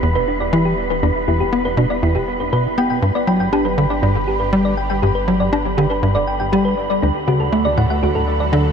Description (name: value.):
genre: ambient, sequencer-driven space music.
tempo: 120 BPM.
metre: 4/4.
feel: straight.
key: unclear.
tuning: A4 = 441 Hz.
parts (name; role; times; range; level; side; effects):
lush unison pad; sustained chords; 0.0-8.7 s; D3 to B4; -27 LUFS; right 2 dB; chorus.
tight sequencer bass; riff; 0.0-8.7 s; D2 to D4; -18 LUFS; equal; analog chorus, analog delay.
warm sub bass; bass; 0.0-8.7 s; E1 to D2; -26 LUFS; equal; none.
wind-like tuned noise texture; texture; 0.0-8.7 s; B5; -25 LUFS; right 1 dB; built-in reverb.
thumb-piano-like synth pluck; arpeggios; 0.2-8.6 s; D4 to G5; -21 LUFS; moving between left 4 dB and right 2 dB; chorus, auto-pan, analog delay.
room: moderate huge ambient reverb, RT60 8.6 s.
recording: none.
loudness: -15 LUFS.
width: side -7 dB against mid.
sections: 0.0-8.7 A section.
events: fade-in on analog synth pad 0.0-8.7.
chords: 0.0 Em7; 3.0 G; 7.0 D.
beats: 0.03 0.53 | 1.03 1.53 2.03 2.53 | 3.03 3.53 4.03 4.53 | 5.03 5.53 6.03 6.53 | 7.03 7.53 8.03 8.53.